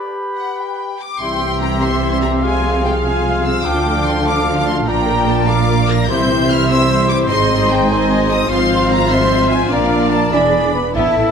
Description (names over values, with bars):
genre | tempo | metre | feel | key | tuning
cinematic | 99 BPM (dotted quarters) | 6/8 | straight | C mixolydian | A4 = 442 Hz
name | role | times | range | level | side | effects
mellow concert flute | second line | 0.0-11.3 s | G#5 to C6 | -26 LUFS | left 4 dB | none
warm clarinet | second line | 0.0-11.3 s | B3 to G4 | -26 LUFS | left 2 dB | none
warm oboe | second line | 0.0-11.3 s | B4 to F5 | -25 LUFS | right 3 dB | none
warm symphonic violin section | melody | 0.4-11.3 s | F5 to Bb6 | -21 LUFS | left 3 dB | none
warm symphonic violin section | second line | 1.2-11.3 s | A3 to G5 | -24 LUFS | left 2 dB | none
warm symphonic viola section | accompaniment | 1.2-11.3 s | F3 to Bb4 | -23 LUFS | right 2 dB | none
mellow French horn section | sustained chords | 1.2-10.7 s | Eb3 to D4 | -22 LUFS | left 6 dB | none
dark trumpet | stabs | 1.2-11.3 s | G4 to E5 | -21 LUFS | equal | none
clear symphonic double bass section | bass | 1.2-11.2 s | E1 to D2 | -21 LUFS | right 3 dB | none
warm symphonic cello section | bass | 1.2-11.3 s | E2 to E4 | -21 LUFS | right 4 dB | none
room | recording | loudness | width
wet recital hall reverb, RT60 1.4 s | none | -13 LUFS | side -6 dB against mid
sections
0.0-1.2 A section; 1.2-11.0 B section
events
none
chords
0.0 G; 1.2 C; 2.4 Fm/C; 3.7 Dm; 4.9 Bb; 6.1 C; 7.3 Ab; 8.5 Fm/Ab; 9.7 Bb; 10.3 E7